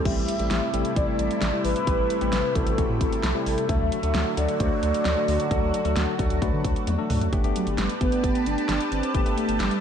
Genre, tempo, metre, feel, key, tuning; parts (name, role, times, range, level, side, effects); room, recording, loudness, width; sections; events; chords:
synth-pop; 132 BPM; 4/4; straight; G major; A4 = 445 Hz
mellow horn-like synth lead; melody; 0.0-9.8 s; F#3 to E5; -28 LUFS; right 2 dB; chorus, diffuse ambient delay, shimmer reverb
lush unison pad; sustained chords; 0.0-9.8 s; C3 to A5; -30 LUFS; equal; chorus, phaser, shimmer reverb
tine electric piano; accompaniment; 0.1-9.7 s; F#3 to D5; -29 LUFS; left 5 dB; medium stereo tremolo, shimmer reverb
round analog bass; bass; 0.1-9.7 s; G1 to D3; -28 LUFS; equal
pop drum kit; drums; 0.1-9.8 s; crash cymbal, hi-hat, kick drum, snare drum, toms; -27 LUFS; equal
moderate plate reverb, RT60 1.2 s; dreamy mix soaked in reverb; -22 LUFS; side -8 dB against mid
0.0-7.3 A section; 7.3-9.8 B section
tine electric piano fill 6.6-7.3; drum fill 6.9-7.3
0.1 Am7; 3.7 D; 7.3 Gadd9